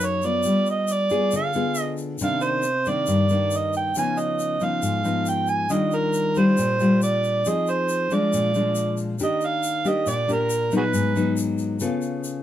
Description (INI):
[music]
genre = bossa nova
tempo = 137 BPM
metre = 4/4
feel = straight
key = Eb major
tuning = A4 = 438 Hz
[part]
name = overdriven harmonica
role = melody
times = 0.0-11.4 s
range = Gb4 to Ab5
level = -23 LUFS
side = right 3 dB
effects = none
[part]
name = nylon-string guitar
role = accompaniment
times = 0.0-12.4 s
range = F#2 to A4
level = -23 LUFS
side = left 2 dB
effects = none
[part]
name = tube shaker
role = percussion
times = 0.0-12.4 s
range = none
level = -37 LUFS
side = left 5 dB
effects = none
[sound]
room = moderate studio ambience, RT60 0.5 s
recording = none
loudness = -20 LUFS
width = side -11 dB against mid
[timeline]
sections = 0.0-9.2 A section; 9.2-12.4 B section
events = none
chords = 0.5 G7b9; 2.2 Cm9; 4.0 Db9; 5.7 Ebmaj9; 7.4 Fm7; 8.3 Bb7; 9.2 Ebmaj7; 10.9 Abm7; 11.8 Db7b13